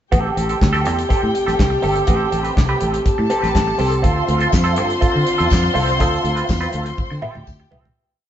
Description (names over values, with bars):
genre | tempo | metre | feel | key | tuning
disco | 122 BPM | 4/4 | straight | A minor | A4 = 440 Hz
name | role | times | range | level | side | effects
warm studio string section | second line | 0.1-8.0 s | G4 to C6 | -24 LUFS | left 2 dB | none
semi-hollow electric guitar | accompaniment | 0.1-7.9 s | C4 to B4 | -23 LUFS | right 3 dB | wah, spring reverb
warm French horn section | sustained chords | 0.1-7.9 s | C3 to G4 | -23 LUFS | equal | none
fingered electric bass | bass | 0.1-7.9 s | G1 to D3 | -21 LUFS | equal | none
damped 70s drum kit | drums | 0.1-8.0 s | handclaps, hi-hat, kick drum, snare drum, toms | -20 LUFS | equal | none
tambourine | percussion | 4.5-7.6 s | none | -35 LUFS | left 4 dB | none
room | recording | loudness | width
moderate stone room reverb, RT60 1.1 s | band playing live in one room, nothing above 7.9 kHz | -15 LUFS | side -10 dB against mid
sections
0.1-8.0 groove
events
fade-out 6.0-8.0; drum fill 7.0-8.0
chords
0.1 Am7; 4.0 Dm7